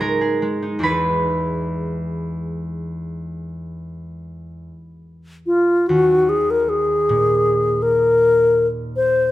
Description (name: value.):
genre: classical, impressionist duo for alto flute and harp.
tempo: 46-53 BPM (dotted quarters).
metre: 12/8.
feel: rubato.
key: unclear.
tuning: A4 = 439 Hz.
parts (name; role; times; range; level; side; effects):
concert harp; accompaniment; 0.0-9.3 s; Db2 to Eb6; -23 LUFS; right 1 dB; none.
alto flute; melody; 5.5-9.3 s; F4 to C5; -15 LUFS; left 1 dB; none.
room: moderate recital hall reverb, RT60 1.7 s.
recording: none.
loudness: -16 LUFS.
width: side -15 dB against mid.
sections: 0.0-5.9 A section; 5.9-9.3 B section.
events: none.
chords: 0.0 Db7sus2; 0.8 Emaj7; 5.9 Eb5.